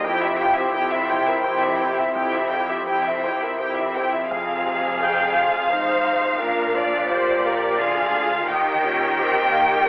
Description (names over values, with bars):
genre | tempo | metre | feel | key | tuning
cinematic, emotional film score for orchestra | 86 BPM | 3/4 | rubato | F minor | A4 = 439 Hz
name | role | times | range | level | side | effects
warm studio violin section | melody | 0.0-9.9 s | D5 to G5 | -22 LUFS | equal | none
dark studio violin section | second line | 0.0-9.9 s | E4 to D5 | -25 LUFS | equal | none
rich studio viola section | accompaniment | 0.0-9.9 s | Bb3 to G5 | -28 LUFS | equal | none
warm baby grand piano | accompaniment | 0.0-9.9 s | Eb2 to F5 | -26 LUFS | equal | none
dark French horn section | sustained chords | 0.0-4.0 s | C4 to E4 | -28 LUFS | equal | none
rich studio cello section | bass | 0.0-9.9 s | F2 to Eb3 | -28 LUFS | equal | none
warm studio double bass section | bass | 4.3-9.9 s | F1 to Eb2 | -39 LUFS | equal | none
room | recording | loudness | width
moderate scoring stage reverb, RT60 1.4 s | telephone sound | -18 LUFS | side -24 dB against mid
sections
0.0-4.3 A section; 4.3-9.9 B section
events
none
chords
0.1 C/F; 4.3 Fm; 6.4 Bb; 8.5 Ebadd9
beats
| 0.05 0.75 1.45 | 2.17 2.89 3.60 | 4.31 5.01 5.70 | 6.40 7.09 7.79 | 8.49 9.18 9.86